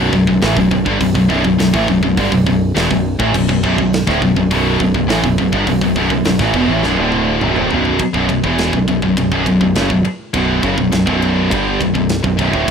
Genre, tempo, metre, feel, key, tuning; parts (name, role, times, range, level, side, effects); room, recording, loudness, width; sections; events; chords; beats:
heavy metal; 103 BPM; 4/4; straight; B minor; A4 = 440 Hz
scooped high-gain guitar; riff; 0.0-12.7 s; B1 to G3; -16 LUFS; left 8 dB; distortion
tight distorted guitar; riff; 0.0-12.7 s; B1 to G3; -17 LUFS; right 12 dB; distortion
growling picked electric bass; bass; 0.0-12.7 s; B0 to A1; -21 LUFS; equal; overdrive
tight metal drum kit; drums; 0.1-12.7 s; crash cymbal, hi-hat, kick drum, ride cymbal, snare drum, toms; -22 LUFS; equal
light reverb; rough home demo mix; -12 LUFS; side -6 dB against mid
0.0-8.0 A section; 8.0-12.7 B section
drum fill 6.8-8.0
0.0 Bm
0.42 | 1.00 1.59 2.17 2.75 | 3.34 3.92 4.50 5.09 | 5.67 6.25 6.83 7.42 | 8.00 8.59 9.17 9.75 | 10.34 10.92 11.51 12.09 | 12.68